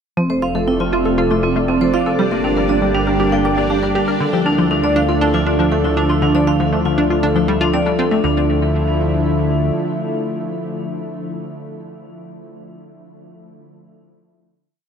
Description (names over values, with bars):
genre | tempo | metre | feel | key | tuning
ambient, sequencer-driven space music | 119 BPM | 4/4 | straight | D minor | A4 = 440 Hz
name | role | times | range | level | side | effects
lush unison pad | sustained chords | 0.2-11.3 s | C3 to G4 | -20 LUFS | equal | chorus
vibraphone with hard mallets | arpeggios | 0.2-8.5 s | C4 to D6 | -20 LUFS | moving between left 1 dB and right 5 dB | auto-pan, ping-pong delay
analog pluck | riff | 0.2-8.5 s | D3 to Bb4 | -20 LUFS | left 1 dB | chorus, ping-pong delay
fat analog bass | bass | 0.2-9.7 s | F1 to D2 | -24 LUFS | equal | none
bubbling stepped-filter texture | texture | 0.2-8.2 s | D4 to D5 | -27 LUFS | left 2 dB | chorus, built-in reverb
room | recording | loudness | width
wet huge ambient reverb, RT60 9.1 s | none | -14 LUFS | side -7 dB against mid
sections
0.2-8.2 A section; 8.2-12.3 final chord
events
none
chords
0.2 Fmaj7; 2.2 Gm; 4.2 Dmadd9